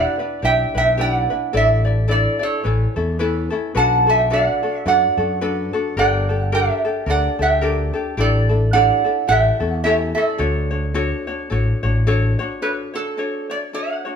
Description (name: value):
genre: Hawaiian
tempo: 108 BPM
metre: 4/4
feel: swing 58% on 8ths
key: D major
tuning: A4 = 435 Hz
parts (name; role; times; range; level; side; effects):
- metal-body resonator slide guitar; melody; 0.0-14.2 s; A4 to A5; -19 LUFS; right 3 dB; none
- ukulele; accompaniment; 0.0-14.2 s; C#4 to D5; -23 LUFS; left 4 dB; none
- fretless electric bass; bass; 0.0-12.3 s; G1 to F#2; -20 LUFS; equal; none
room: moderate large studio reverb, RT60 1.1 s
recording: band playing live in one room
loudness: -16 LUFS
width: side -6 dB against mid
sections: 0.0-12.6 A section; 12.6-14.2 B section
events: none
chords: 0.0 Em7; 1.5 Asus4; 2.6 Aadd9; 3.8 Bm7; 6.0 Gmadd9; 8.2 A7sus4; 9.3 A7; 10.4 Dmaj7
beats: 0.43 0.98 | 1.54 2.09 2.64 3.20 | 3.75 4.30 4.86 5.41 | 5.96 6.52 7.07 7.63 | 8.18 8.73 9.29 9.84 | 10.40 10.95 11.51 12.06 | 12.62 13.18 13.74